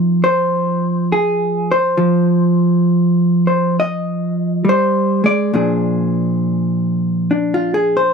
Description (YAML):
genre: solo jazz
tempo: 68 BPM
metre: 4/4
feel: swing 67% on 8ths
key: unclear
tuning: A4 = 440 Hz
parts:
  - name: vintage hollow-body jazz guitar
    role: solo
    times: 0.0-8.1 s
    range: Bb2 to Eb5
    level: -14 LUFS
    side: equal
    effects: none
room: light reverb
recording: dry, close 1970s-style studio recording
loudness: -14 LUFS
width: side -5 dB against mid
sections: 0.0-8.1 A section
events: hollow-body jazz guitar solo 0.0-8.1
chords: 0.0 Fm7; 5.5 Bb7